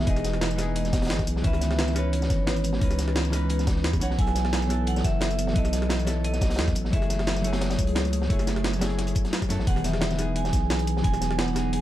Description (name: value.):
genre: liquid drum and bass.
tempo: 175 BPM.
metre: 4/4.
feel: straight.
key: F# dorian.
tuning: A4 = 440 Hz.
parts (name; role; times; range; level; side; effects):
vibraphone with medium hard mallets; melody; 0.0-11.8 s; C#5 to G#5; -33 LUFS; right 1 dB; ping-pong delay.
hollow-body jazz guitar; accompaniment; 0.0-11.8 s; D#3 to C#5; -30 LUFS; left 1 dB; none.
airy breathy pad; sustained chords; 0.0-11.8 s; E3 to B4; -34 LUFS; equal; chorus, sidechain pumping.
saturated sub bass; bass; 0.0-11.8 s; E1 to F#2; -27 LUFS; equal; none.
crunchy breakbeat drum kit; drums; 0.1-11.8 s; hi-hat, snare drum; -35 LUFS; right 1 dB; high-pass filter on hats, high-pass filter on snare, high-pass filter on room.
electronic kick drum; drums; 0.1-11.1 s; none; -26 LUFS; equal; none.
jungle sampler-style drum kit; drums; 0.1-11.8 s; hi-hat, snare drum, tambourine; -32 LUFS; right 1 dB; none.
room: light reverb.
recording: dark, warm production.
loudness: -22 LUFS.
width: side -13 dB against mid.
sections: 0.0-11.8 A section.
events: none.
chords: 0.0 Emaj7; 1.4 C#m9; 4.2 B7sus4; 6.9 F#m9; 9.7 Emaj7.